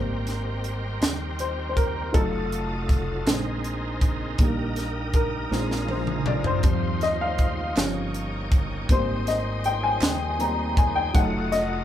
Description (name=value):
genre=slow gospel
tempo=53 BPM (dotted quarters)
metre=6/8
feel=straight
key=Eb major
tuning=A4 = 440 Hz
part: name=warm upright piano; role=accompaniment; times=0.0-11.8 s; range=Eb3 to Bb5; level=-27 LUFS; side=left 2 dB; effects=none
part: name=bright tonewheel organ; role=sustained chords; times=0.0-11.8 s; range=Gb3 to Eb5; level=-34 LUFS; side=right 2 dB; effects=slow rotary speaker, overdrive, chorus vibrato
part: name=dark studio string section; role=sustained chords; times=0.0-11.8 s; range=Eb5 to Eb6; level=-40 LUFS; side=left 2 dB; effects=none
part: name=fingered electric bass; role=bass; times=0.0-11.8 s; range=F1 to Eb2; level=-30 LUFS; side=equal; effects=none
part: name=crisp fusion drum kit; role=drums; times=0.3-11.7 s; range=hi-hat, kick drum, snare drum, toms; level=-24 LUFS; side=equal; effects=none
part: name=group handclap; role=percussion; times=7.8-10.4 s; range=none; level=-37 LUFS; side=right 3 dB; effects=none
room=moderate small room reverb, RT60 0.5 s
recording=band playing live in one room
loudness=-22 LUFS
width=side -11 dB against mid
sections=0.0-11.8 A section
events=upright piano solo 0.0-11.8; drum fill 5.5-6.6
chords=0.0 Abmaj9; 2.1 F7b9; 3.3 Bb9sus4; 4.4 Eb/Bb; 5.5 Bb7sus4; 6.6 Eb69; 7.8 Eb7/G; 8.9 Abmaj7; 11.1 F7b9